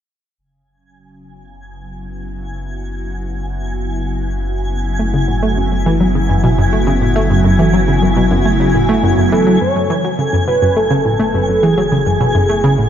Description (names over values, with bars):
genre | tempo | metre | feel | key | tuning
ambient, sequencer-driven space music | 104 BPM | 4/4 | straight | F# minor | A4 = 440 Hz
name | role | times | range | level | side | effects
evolving wavetable pad | sustained chords | 1.9-12.9 s | C#3 to F#4 | -19 LUFS | equal | ensemble chorus, built-in reverb, phaser
warm sub bass | bass | 0.4-12.9 s | F#1 | -21 LUFS | left 1 dB | none
twinkling granular texture | texture | 1.6-12.9 s | G#5 | -24 LUFS | equal | built-in reverb, ensemble chorus, shimmer reverb
analog pluck | riff | 5.0-12.9 s | F#2 to A3 | -15 LUFS | equal | chorus, cassette tape, tape echo
pulse-width lead | melody | 9.3-12.9 s | G#4 to C#5 | -16 LUFS | right 1 dB | chorus, cassette tape, shimmer reverb, tape echo
room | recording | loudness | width
wet plate reverb, RT60 3.4 s | dreamy mix soaked in reverb | -12 LUFS | side -9 dB against mid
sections
0.4-9.6 A section; 9.6-12.9 B section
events
fade-in on ambient pad 0.4-9.6; fade-in on sub bass 0.4-9.6; fade-in on synth texture 0.4-9.6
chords
0.4 F#madd9